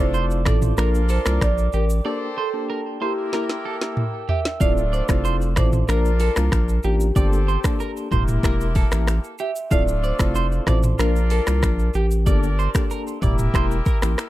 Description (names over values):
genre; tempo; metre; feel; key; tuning
afrobeats; 94 BPM; 4/4; straight; D minor; A4 = 438 Hz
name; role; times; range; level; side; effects
marimba with medium mallets; melody; 0.0-12.9 s; G4 to E5; -27 LUFS; right 1 dB; tape echo
clear horn section; second line; 0.0-14.3 s; A3 to A5; -32 LUFS; left 3 dB; none
soft electric-piano-like synth keys; accompaniment; 0.0-14.2 s; Bb3 to Bb4; -28 LUFS; left 2 dB; chorus, tremolo
glass harmonica; sustained chords; 0.0-4.6 s; Bb4 to E6; -36 LUFS; right 2 dB; none
saturated sub bass; bass; 0.0-14.2 s; D1 to C2; -21 LUFS; equal; none
electric guitar at the edge of break-up; riff; 0.1-14.0 s; G4 to F5; -31 LUFS; right 8 dB; spring reverb, tape echo
afro-pop drum kit; drums; 0.1-14.3 s; finger snaps, hi-hat, kick drum, rim click, shaker, snare drum, toms; -21 LUFS; equal; none
room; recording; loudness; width
little or no reverb; dark, warm production; -18 LUFS; side -15 dB against mid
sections
0.0-4.6 A section; 4.6-14.3 A section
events
break 2.1-4.6; drum fill 3.3-4.6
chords
0.0 Dm7; 0.8 Bb; 2.1 Gmadd9; 3.0 Edim; 4.6 Dm7; 5.9 Bb; 7.2 Gmadd9; 8.1 Edim; 9.7 Dm7; 11.0 Bb; 12.3 Gmadd9; 13.2 Edim